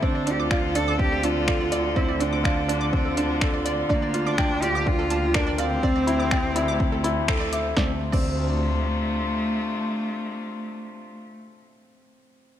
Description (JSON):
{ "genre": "piano and strings electronica", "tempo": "124 BPM", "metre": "4/4", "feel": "straight", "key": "D minor", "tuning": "A4 = 440 Hz", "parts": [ { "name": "rich cello", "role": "melody", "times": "0.0-11.4 s", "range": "A3 to A4", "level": "-28 LUFS", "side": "equal", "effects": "none" }, { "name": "warm string quartet", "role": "sustained chords", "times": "0.0-11.2 s", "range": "C3 to A4", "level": "-32 LUFS", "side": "left 3 dB", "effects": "sidechain pumping" }, { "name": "analog pluck", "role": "arpeggios", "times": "0.0-8.3 s", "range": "A4 to D6", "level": "-34 LUFS", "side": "right 3 dB", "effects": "chorus, sidechain pumping, tape echo" }, { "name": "felt-muted upright piano", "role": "riff", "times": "0.0-12.6 s", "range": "C4 to G5", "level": "-27 LUFS", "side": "right 2 dB", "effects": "tape echo" }, { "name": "muted symphonic double bass section", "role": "bass", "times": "0.0-9.2 s", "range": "D2", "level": "-29 LUFS", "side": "equal", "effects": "sidechain pumping" }, { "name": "electronic kick drum", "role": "drums", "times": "0.0-8.3 s", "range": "none", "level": "-25 LUFS", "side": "equal", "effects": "overdrive" }, { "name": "deep house drum kit", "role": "drums", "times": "0.3-8.3 s", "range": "crash cymbal, finger snaps, hi-hat, snare drum", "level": "-30 LUFS", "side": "left 1 dB", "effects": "overdrive" } ], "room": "light reverb, small room ambience", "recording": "none", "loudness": "-21 LUFS", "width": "side -11 dB against mid", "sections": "0.0-7.8 A section; 7.8-11.6 B section", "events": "drop 0.0-7.8; band accent 7.3", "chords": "0.0 Dm7; 3.9 Gm7/D; 5.8 Am7/D; 7.8 Dm7", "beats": "| 0.03 0.51 0.99 1.48 | 1.96 2.44 2.93 3.41 | 3.90 4.38 4.87 5.35 | 5.83 6.32 6.80 7.28 | 7.77 8.25 8.74 9.22 | 9.70 10.19 10.67 11.15" }